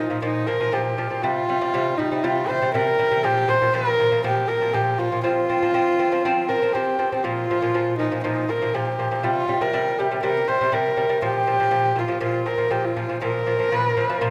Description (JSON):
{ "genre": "mongolian traditional, Mongolian folk", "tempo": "120 BPM", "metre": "4/4", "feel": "straight", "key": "Bb zhi mode", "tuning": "A4 = 440 Hz", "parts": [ { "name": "warm horsehead fiddle", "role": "melody", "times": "0.0-14.3 s", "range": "Eb4 to C5", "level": "-24 LUFS", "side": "equal", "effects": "none" }, { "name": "lute", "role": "arpeggios", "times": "0.0-14.3 s", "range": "Bb2 to C4", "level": "-26 LUFS", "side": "equal", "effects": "none" } ], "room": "wet recital hall reverb, RT60 1.8 s", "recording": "none", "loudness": "-22 LUFS", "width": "mono", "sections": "0.0-14.3 A section", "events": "none", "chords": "0.0 Bb5; 1.2 C5; 3.2 Bb5; 5.2 F5; 7.2 Bb5; 9.2 C5; 11.2 Bb5", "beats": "0.23 0.73 | 1.24 1.74 2.24 2.74 | 3.24 3.74 4.24 4.74 | 5.24 5.74 6.24 6.74 | 7.24 7.74 8.24 8.74 | 9.23 9.73 10.23 10.73 | 11.22 11.72 12.22 12.71 | 13.21 13.71 14.20" }